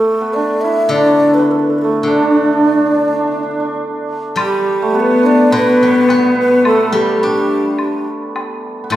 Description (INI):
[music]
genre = chinese traditional, Chinese chamber ensemble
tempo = 106 BPM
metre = 4/4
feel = straight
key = D zhi mode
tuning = A4 = 440 Hz
[part]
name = breathy mellow xiao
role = melody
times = 0.0-8.1 s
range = G4 to E5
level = -16 LUFS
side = equal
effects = none
[part]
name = hammered dulcimer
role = second line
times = 0.0-9.0 s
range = G3 to E4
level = -16 LUFS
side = right 2 dB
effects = none
[part]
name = steel-string zither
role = accompaniment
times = 0.9-9.0 s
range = A2 to D4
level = -18 LUFS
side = left 1 dB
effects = none
[part]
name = clear horsehead fiddle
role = second line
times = 4.4-8.1 s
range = G3 to B3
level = -16 LUFS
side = left 3 dB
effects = none
[part]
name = woodblock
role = percussion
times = 4.4-9.0 s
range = none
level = -24 LUFS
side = left 2 dB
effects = none
[sound]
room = wet recital hall reverb, RT60 1.9 s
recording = heard from further back in the room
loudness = -11 LUFS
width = side -13 dB against mid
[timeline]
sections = 0.0-4.4 A section; 4.4-9.0 B section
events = none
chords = none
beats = 0.35 0.92 1.49 | 2.06 2.63 3.20 3.79 | 4.37 4.95 5.53 6.10 | 6.66 7.23 7.80 8.36 | 8.93